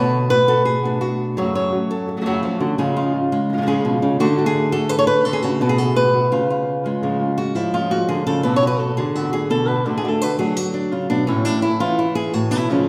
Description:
flamenco; 170 BPM; 4/4; straight; C# phrygian dominant; A4 = 444 Hz
flamenco guitar; melody; 0.0-12.9 s; A2 to C#5; -20 LUFS; equal
flamenco guitar; stabs; 0.0-12.9 s; F#2 to F#4; -26 LUFS; equal
wet recital hall reverb, RT60 1.5 s; recorded in a church or concert hall; -19 LUFS; mono
0.0-7.0 A section; 7.0-12.9 B section
nylon-string guitar solo 7.0-12.9
0.0 Bm7; 1.4 F#m; 2.8 C#; 4.2 D; 5.6 Bm7; 6.3 C#; 8.4 Bm; 9.9 D; 11.3 A
0.31 0.66 1.02 | 1.37 1.72 2.08 2.43 | 2.78 3.14 3.49 3.84 | 4.20 4.55 4.90 5.26 | 5.61 5.96 6.32 6.67 | 7.03 7.38 7.73 8.09 | 8.44 8.80 9.15 9.51 | 9.86 10.22 10.57 10.93 | 11.28 11.63 11.99 12.34 | 12.70

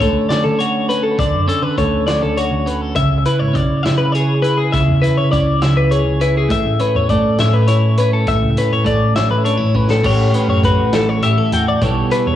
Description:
math rock and midwest emo; 68 BPM (dotted quarters); 6/8; straight; A4 = 440 Hz
twelve-string electric guitar; accompaniment; 0.0-12.4 s; A2 to A4; -17 LUFS; right 2 dB; spring reverb, cassette tape
twelve-string electric guitar; arpeggios; 0.0-12.4 s; G#4 to G5; -18 LUFS; left 4 dB; cassette tape, analog delay
hollow-body short-scale picked electric bass; bass; 0.0-12.4 s; G1 to D3; -19 LUFS; equal
loose indie drum kit; drums; 0.0-12.3 s; crash cymbal, hi-hat, kick drum, snare drum; -24 LUFS; equal; cassette tape
little or no reverb; home recording on cassette, small room ambience; -13 LUFS; side -11 dB against mid
0.0-10.1 A section; 10.1-12.4 B section
drum fill 9.8
0.0 Dmaj7; 3.0 C#m7; 6.5 A; 10.1 A13; 11.8 G69/B
0.29 | 1.18 2.06 | 2.95 3.84 | 4.73 5.62 | 6.50 7.39 | 8.28 9.16 | 10.05 10.94 | 11.82

